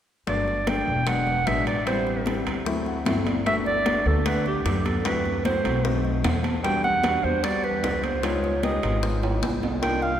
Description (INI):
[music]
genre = Afro-Cuban jazz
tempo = 151 BPM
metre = 4/4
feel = straight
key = G major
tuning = A4 = 440 Hz
[part]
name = warm clarinet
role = melody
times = 0.3-10.2 s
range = G4 to G5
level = -26 LUFS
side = right 2 dB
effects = none
[part]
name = warm concert grand piano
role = accompaniment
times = 0.3-10.1 s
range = F#3 to A5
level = -27 LUFS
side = left 3 dB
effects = none
[part]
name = upright bass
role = bass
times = 0.3-10.2 s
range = E1 to F#2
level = -28 LUFS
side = equal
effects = none
[part]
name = bongos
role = percussion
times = 0.3-10.2 s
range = none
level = -35 LUFS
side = left 4 dB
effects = none
[part]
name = congas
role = percussion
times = 0.3-10.2 s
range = none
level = -33 LUFS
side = left 1 dB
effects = none
[part]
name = timbales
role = percussion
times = 0.3-10.0 s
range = none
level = -33 LUFS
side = right 4 dB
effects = none
[sound]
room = wet cathedral reverb, RT60 4.2 s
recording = recorded in a church or concert hall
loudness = -22 LUFS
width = side -10 dB against mid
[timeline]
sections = 0.3-3.5 A section; 3.5-10.2 B section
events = grand piano fill 2.7-3.5, 5.8-6.6; drum fill 9.2-9.8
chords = 0.3 Gmaj7; 1.1 E7; 1.9 Am7; 2.7 D7; 3.5 Gmaj9; 5.1 F#m7b5; 5.8 B7b9; 6.6 Em9; 8.2 C#9